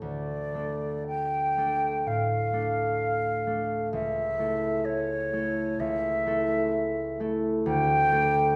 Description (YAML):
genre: classical, romantic duo for flute and harp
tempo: 64 BPM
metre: 4/4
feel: rubato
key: D minor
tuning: A4 = 439 Hz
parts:
  - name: mellow concert flute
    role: melody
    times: 0.0-8.6 s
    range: C#5 to G5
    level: -29 LUFS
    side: equal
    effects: none
  - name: concert harp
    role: accompaniment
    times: 0.0-8.6 s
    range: C#2 to A4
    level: -31 LUFS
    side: equal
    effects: none
room: wet recital hall reverb, RT60 1.3 s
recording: recorded in a church or concert hall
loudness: -27 LUFS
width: mono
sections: 0.0-8.6 A section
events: none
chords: 0.0 Dm; 3.9 A/C#; 7.7 D5